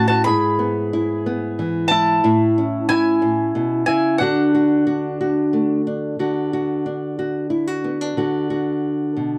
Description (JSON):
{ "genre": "acoustic folk duo or small band", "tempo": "61 BPM (dotted quarters)", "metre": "6/8", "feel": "straight", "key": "unclear", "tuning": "A4 = 442 Hz", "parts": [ { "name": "bowl-back mandolin", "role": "melody", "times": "0.0-5.8 s", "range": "F#5 to B5", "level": "-24 LUFS", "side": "equal", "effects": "none" }, { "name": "pedal steel guitar", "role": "second line", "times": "0.0-5.8 s", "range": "D4 to G#4", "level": "-23 LUFS", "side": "equal", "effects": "none" }, { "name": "nylon-string guitar", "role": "accompaniment", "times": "0.0-9.4 s", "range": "G#2 to F#4", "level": "-22 LUFS", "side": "equal", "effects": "none" } ], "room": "light reverb", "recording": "dry, close 1970s-style studio recording", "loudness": "-20 LUFS", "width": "mono", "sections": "0.0-6.2 A section; 6.2-9.4 B section", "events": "none", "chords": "0.3 E/G#; 2.2 A; 4.2 D" }